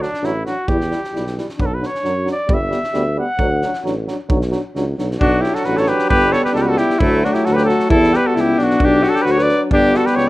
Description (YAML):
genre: balkan folk, Balkan brass band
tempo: 133 BPM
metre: 2/4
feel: straight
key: B minor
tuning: A4 = 440 Hz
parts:
  - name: warm trumpet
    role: melody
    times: 0.0-10.3 s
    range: D4 to F#5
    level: -20 LUFS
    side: equal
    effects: none
  - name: clear euphonium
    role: accompaniment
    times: 0.0-10.3 s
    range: F#3 to G3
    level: -25 LUFS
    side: right 3 dB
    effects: none
  - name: dark euphonium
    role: accompaniment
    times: 0.0-10.3 s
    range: A3 to E4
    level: -23 LUFS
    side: left 3 dB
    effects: none
  - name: warm tuba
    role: bass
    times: 0.0-10.3 s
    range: G1 to F#2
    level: -21 LUFS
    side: equal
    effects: none
  - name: loose indie drum kit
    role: percussion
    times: 0.0-10.2 s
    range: kick drum, snare drum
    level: -23 LUFS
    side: equal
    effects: none
  - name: bright alto saxophone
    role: second line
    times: 5.2-10.3 s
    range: A3 to B4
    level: -17 LUFS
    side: left 2 dB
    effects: none
room: light reverb, small room ambience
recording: rough home demo mix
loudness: -14 LUFS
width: side -18 dB against mid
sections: 0.0-5.2 A section; 5.2-10.3 B section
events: trumpet solo 0.0-5.2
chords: 0.0 D; 0.7 Em; 1.6 Bm; 2.5 G; 3.4 D; 4.3 Bm; 6.1 G; 7.0 D; 7.9 Em; 8.8 Bm; 9.7 G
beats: 0.23 | 0.68 1.14 | 1.59 2.04 | 2.50 2.95 | 3.40 3.85 | 4.30 4.76 | 5.21 5.66 | 6.11 6.56 | 7.01 7.46 | 7.91 8.36 | 8.81 9.26 | 9.70 10.15